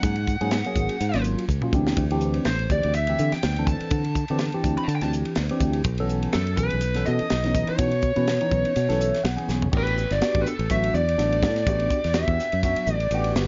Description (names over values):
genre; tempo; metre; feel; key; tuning
electric jazz fusion; 124 BPM; 4/4; swing 55% on 16ths; unclear; A4 = 441 Hz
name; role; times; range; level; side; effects
bluesy overdriven lead guitar; melody; 0.0-13.3 s; A4 to B5; -28 LUFS; equal; distortion
tine electric piano; accompaniment; 0.0-13.4 s; E3 to F#5; -30 LUFS; equal; phaser
fingered electric bass; bass; 0.0-13.5 s; G1 to D3; -27 LUFS; equal; none
tight funk drum kit; drums; 0.0-13.5 s; crash cymbal, hi-hat, kick drum, ride cymbal, snare drum, toms; -31 LUFS; equal; none
room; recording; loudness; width
little or no reverb; nothing above 7.5 kHz; -24 LUFS; mono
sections
0.0-9.7 A section; 9.7-13.5 B section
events
drum fill 1.5-2.0, 9.5; tine electric piano fill 8.8-9.7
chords
0.0 G#9sus4; 1.7 D9sus4; 5.9 B9sus4; 9.7 A13sus4